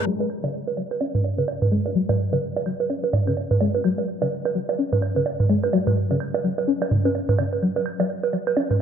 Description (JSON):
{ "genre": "minimal techno", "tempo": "127 BPM", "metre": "4/4", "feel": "swing 60% on 16ths", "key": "unclear", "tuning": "A4 = 442 Hz", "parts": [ { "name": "string-like resonator pluck", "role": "riff", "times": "0.1-8.7 s", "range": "C#3 to C#4", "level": "-25 LUFS", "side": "left 4 dB", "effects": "chorus, ping-pong delay" }, { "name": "punchy sub bass", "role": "bass", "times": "0.1-8.8 s", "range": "none", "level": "barely audible", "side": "none", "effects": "none" }, { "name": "electronic bongos, woodblock and toms", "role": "percussion", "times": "0.2-8.8 s", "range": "none", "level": "-22 LUFS", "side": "right 3 dB", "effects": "digital delay" } ], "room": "wet plate reverb, RT60 2.2 s", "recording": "bright 1980s-style digital production, low-pass filter", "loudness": "-20 LUFS", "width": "side -8 dB against mid", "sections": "0.1-8.8 A section", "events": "filter sweep 0.1-8.8", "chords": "0.1 F#5", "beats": "| 0.06 0.53 1.01 1.48 | 1.95 2.42 2.90 3.37 | 3.84 4.31 4.79 5.26 | 5.73 6.20 6.68 7.15 | 7.62 8.09 8.57" }